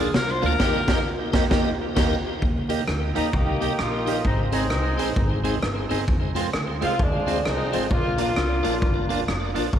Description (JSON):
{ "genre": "ska", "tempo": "131 BPM", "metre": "4/4", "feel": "swing 62% on 8ths", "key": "Eb major", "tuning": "A4 = 440 Hz", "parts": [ { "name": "clear tenor saxophone", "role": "melody", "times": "0.0-1.1 s", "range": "Ab4 to C5", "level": "-26 LUFS", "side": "left 2 dB", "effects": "none" }, { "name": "semi-hollow electric guitar", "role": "accompaniment", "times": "0.0-9.7 s", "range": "Ab3 to Ab4", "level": "-29 LUFS", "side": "right 8 dB", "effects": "tape echo" }, { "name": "tonewheel organ", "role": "stabs", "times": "0.0-9.7 s", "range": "C4 to Eb5", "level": "-30 LUFS", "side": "left 9 dB", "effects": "overdrive, chorus vibrato, slow rotary speaker, tape echo" }, { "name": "upright bass", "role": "bass", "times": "0.0-9.8 s", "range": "F1 to F2", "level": "-27 LUFS", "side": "equal", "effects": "none" }, { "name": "semi-hollow electric guitar", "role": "riff", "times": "0.1-0.5 s", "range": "C3 to D3", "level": "-34 LUFS", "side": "left 5 dB", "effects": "none" }, { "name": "raw garage drum kit", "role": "drums", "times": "0.1-9.8 s", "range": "crash cymbal, hi-hat, kick drum, rim click, snare drum", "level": "-25 LUFS", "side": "equal", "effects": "none" }, { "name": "warm horn section", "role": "melody", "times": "3.2-9.1 s", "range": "F3 to G4", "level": "-27 LUFS", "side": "left 1 dB", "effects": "tape echo" } ], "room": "light reverb, studio reverb", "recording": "1960s-style stereo with parts hard left and right, vinyl crackle", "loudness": "-20 LUFS", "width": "side -9 dB against mid", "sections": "0.0-2.4 A section; 2.4-9.8 B section", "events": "tenor saxophone solo 0.0-2.4; band accent 0.6-2.4", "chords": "0.0 Bb; 0.6 Eb; 4.3 Ab; 6.1 Fm; 7.9 Bb", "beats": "0.14 | 0.60 1.06 1.51 1.97 | 2.42 2.88 3.34 3.79 | 4.25 4.71 5.16 5.62 | 6.08 6.54 6.99 7.45 | 7.91 8.36 8.82 9.28 | 9.73" }